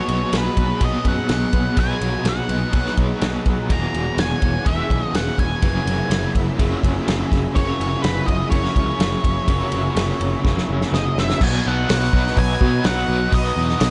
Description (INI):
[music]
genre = rock, shoegaze and dream pop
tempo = 124 BPM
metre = 4/4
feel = straight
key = B major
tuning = A4 = 440 Hz
[part]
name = octave-fuzz lead guitar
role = melody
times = 0.0-13.9 s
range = B4 to A#5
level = -28 LUFS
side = equal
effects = distortion, tape echo
[part]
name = analog string pad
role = sustained chords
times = 0.0-13.9 s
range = G#4 to C#6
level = -35 LUFS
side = equal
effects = ensemble chorus
[part]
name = fingerpicked plugged-in twelve-string acoustic guitar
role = arpeggios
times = 0.0-13.9 s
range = E3 to G#4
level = -35 LUFS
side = equal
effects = none
[part]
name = crunchy overdriven guitar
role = riff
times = 0.0-13.9 s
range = E2 to B3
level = -30 LUFS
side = equal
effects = tremolo
[part]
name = raw garage guitar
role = riff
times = 0.0-13.9 s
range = E2 to G#4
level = -32 LUFS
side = equal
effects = overdrive, reverse reverb
[part]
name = thick fuzz guitar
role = riff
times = 0.0-13.9 s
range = E2 to B3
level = -29 LUFS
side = equal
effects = distortion, subtle chorus
[part]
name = picked electric bass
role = bass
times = 0.1-13.9 s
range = E1 to B2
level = -26 LUFS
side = equal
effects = none
[part]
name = loose indie drum kit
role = drums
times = 0.1-13.9 s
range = crash cymbal, hi-hat, kick drum, ride cymbal, snare drum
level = -24 LUFS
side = equal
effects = none
[sound]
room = small room ambience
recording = dark, warm production, nothing above 11.0 kHz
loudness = -20 LUFS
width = mono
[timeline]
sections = 0.0-11.4 A section; 11.4-13.9 B section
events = drum fill 10.5-11.4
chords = 0.0 B6; 3.7 E69; 5.6 F#9sus4; 11.4 Bmaj7